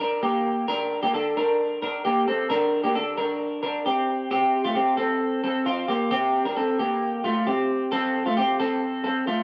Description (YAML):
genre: indie pop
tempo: 132 BPM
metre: 4/4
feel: straight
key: F major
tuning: A4 = 441 Hz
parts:
  - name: electric guitar through a small old amp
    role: solo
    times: 0.0-9.4 s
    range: A3 to Bb4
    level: -24 LUFS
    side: equal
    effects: lush chorus, tape echo
room: moderate spring reverb, RT60 1.3 s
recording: echo-heavy mix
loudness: -24 LUFS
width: mono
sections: 0.0-7.9 A section; 7.9-9.4 B section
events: none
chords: 0.0 Gm; 4.1 C5; 7.9 F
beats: 0.23 | 0.68 1.13 1.59 2.04 | 2.49 2.95 3.40 3.85 | 4.30 4.76 5.21 5.66 | 6.12 6.57 7.02 7.47 | 7.92 8.37 8.82 9.27